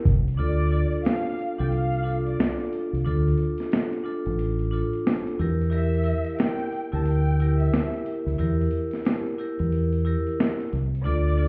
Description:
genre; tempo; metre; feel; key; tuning
hip hop, boom-bap hip-hop; 90 BPM; 4/4; swing 61% on 16ths; unclear; A4 = 440 Hz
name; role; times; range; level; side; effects
vibraphone with hard mallets; accompaniment; 0.0-11.5 s; D4 to Bb4; -31 LUFS; equal; high-pass filter, low-pass filter
deep dub fingered electric bass; bass; 0.1-11.5 s; A1 to E2; -25 LUFS; equal; none
boom bap sampler-style drum kit; drums; 0.1-11.5 s; hi-hat, kick drum, snare drum; -28 LUFS; equal; none
rich studio violin section; melody; 0.4-11.5 s; D5 to A5; -36 LUFS; equal; high-pass filter, low-pass filter, tape echo
room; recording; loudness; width
light reverb; heard muffled through a wall, club reverb, vinyl crackle, EQ; -25 LUFS; mono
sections
0.0-11.5 A section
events
break 0.4-11.1; kick muted 11.1-11.5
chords
0.4 Dm; 5.4 Edim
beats
| 0.39 1.05 1.72 2.39 | 3.06 3.72 4.39 5.05 | 5.72 6.39 7.05 7.72 | 8.39 9.05 9.72 10.39 | 11.05

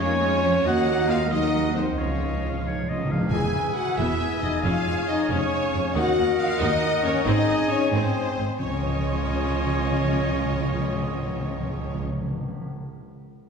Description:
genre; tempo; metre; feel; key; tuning
cinematic, heroic adventure film score; 91 BPM (dotted quarters); 6/8; straight; Db major; A4 = 440 Hz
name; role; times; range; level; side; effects
warm chamber violin section; melody; 0.0-12.0 s; C5 to G#5; -32 LUFS; left 1 dB; none
bright concert flute; second line; 0.0-12.0 s; F5 to G#5; -34 LUFS; left 2 dB; none
warm clarinet; second line; 0.0-12.0 s; F4 to F5; -34 LUFS; equal; none
warm oboe; second line; 0.0-12.0 s; C5 to Gb5; -33 LUFS; right 2 dB; none
warm symphonic violin section; second line; 0.0-12.0 s; C5 to G#5; -34 LUFS; left 2 dB; none
warm symphonic viola section; accompaniment; 0.0-12.0 s; Bb3 to Eb5; -34 LUFS; right 1 dB; none
dark French horn section; sustained chords; 0.0-12.0 s; C4 to G#4; -26 LUFS; left 2 dB; none
warm symphonic cello section; bass; 0.0-12.0 s; Eb2 to Bb3; -30 LUFS; right 2 dB; none
warm symphonic double bass section; bass; 0.0-12.0 s; E1 to F2; -30 LUFS; right 2 dB; none
timpani; percussion; 2.0-3.3, 8.6-12.7 s; Db3; -29 LUFS; equal; none
room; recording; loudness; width
wet scoring stage reverb, RT60 1.9 s; heard from further back in the room; -21 LUFS; side -6 dB against mid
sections
0.0-3.3 A section; 3.3-8.6 B section; 8.6-11.2 C section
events
timpani fill 2.0-3.3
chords
0.0 Db/F; 0.7 Ebm; 2.0 Dbadd9; 3.3 E; 4.6 Db/F; 6.0 Ebm; 7.3 Ab; 8.6 Dbadd9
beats
0.00 | 0.66 1.32 | 1.98 2.65 | 3.32 3.98 | 4.64 5.30 | 5.95 6.61 | 7.27 7.93 | 8.60 9.26 | 9.92 10.58

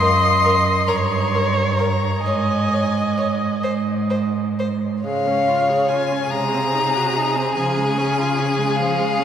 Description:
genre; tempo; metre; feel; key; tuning
classical, slow romantic movement for string quartet; 41-50 BPM (dotted quarters); 6/8; rubato; Db major; A4 = 441 Hz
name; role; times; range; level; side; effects
rich violin; melody; 0.0-9.2 s; F5 to C6; -22 LUFS; left 3 dB; none
clear violin; second line; 0.0-9.2 s; Ab4 to Db5; -24 LUFS; left 1 dB; none
rich viola; accompaniment; 0.0-9.2 s; F3 to Eb5; -24 LUFS; right 2 dB; none
rich cello; bass; 0.0-9.2 s; Gb2 to Db3; -22 LUFS; right 2 dB; none
room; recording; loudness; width
wet cathedral reverb, RT60 4.9 s; recorded in a church or concert hall; -17 LUFS; side -9 dB against mid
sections
0.0-5.1 A section; 5.1-9.2 B section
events
none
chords
0.0 N.C.; 0.9 Gdim; 2.2 Ab5; 5.1 Db; 6.3 Ab7/C; 7.6 Db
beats
0.87 | 2.25 3.65 | 5.06 6.33 | 7.58 8.79

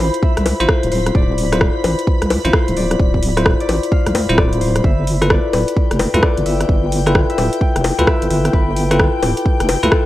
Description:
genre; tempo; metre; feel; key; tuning
UK garage, two-step garage; 130 BPM; 4/4; swing 63% on 16ths; D dorian; A4 = 439 Hz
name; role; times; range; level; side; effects
Celtic harp; melody; 0.0-10.1 s; G4 to G5; -24 LUFS; left 6 dB; tape echo
ethereal airy pad; sustained chords; 0.0-10.1 s; G5 to B5; -28 LUFS; left 3 dB; ensemble chorus, built-in reverb, phaser, sidechain pumping
bell-like tine electric piano; stabs; 0.0-10.1 s; E4 to C5; -20 LUFS; left 1 dB; none
deep soft wobble bass; bass; 0.0-9.9 s; D1 to D2; -18 LUFS; equal; chorus, sidechain pumping
house drum kit; drums; 0.1-10.0 s; bongos, hi-hat, rim click; -20 LUFS; left 1 dB; studio reverb
electronic kick drum; drums; 0.2-10.0 s; none; -16 LUFS; equal; studio reverb
room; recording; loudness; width
little or no reverb; dry, gritty hardware recording; -13 LUFS; side -15 dB against mid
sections
0.0-10.1 A section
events
none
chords
0.0 Dm9; 4.8 G13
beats
0.23 0.69 | 1.15 1.61 2.07 2.53 | 3.00 3.46 3.92 4.38 | 4.84 5.30 5.76 6.23 | 6.69 7.15 7.61 8.07 | 8.53 8.99 9.46 9.92

